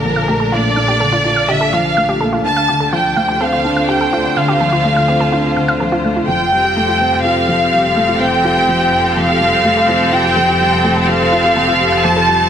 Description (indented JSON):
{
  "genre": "piano and strings electronica",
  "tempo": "125 BPM",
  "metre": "4/4",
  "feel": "straight",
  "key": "F major",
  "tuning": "A4 = 435 Hz",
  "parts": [
    { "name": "warm symphonic violin section", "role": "melody", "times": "0.0-12.5 s", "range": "Bb4 to A5", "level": "-14 LUFS", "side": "equal", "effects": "shimmer reverb" },
    { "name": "clear symphonic string section", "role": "sustained chords", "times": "0.0-12.5 s", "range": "Bb2 to A5", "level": "-20 LUFS", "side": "left 1 dB", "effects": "shimmer reverb" },
    { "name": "felt-muted upright piano", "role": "riff", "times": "0.0-12.5 s", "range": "D3 to G4", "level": "-18 LUFS", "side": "left 1 dB", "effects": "none" },
    { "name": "dark chamber double bass section", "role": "bass", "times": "0.0-12.5 s", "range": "F1 to D2", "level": "-24 LUFS", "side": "equal", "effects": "none" },
    { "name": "analog pluck", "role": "arpeggios", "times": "0.2-12.3 s", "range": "F4 to F5", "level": "-23 LUFS", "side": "right 1 dB", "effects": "chorus, cassette tape, shimmer reverb, tape echo" }
  ],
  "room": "wet concert hall reverb, RT60 2.3 s",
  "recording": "none",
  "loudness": "-11 LUFS",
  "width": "side -8 dB against mid",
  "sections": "0.0-6.3 A section; 6.3-12.5 B section",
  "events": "build-up 6.3-12.5",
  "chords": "0.0 Bbmaj7; 2.4 Dm7; 6.3 Fadd9"
}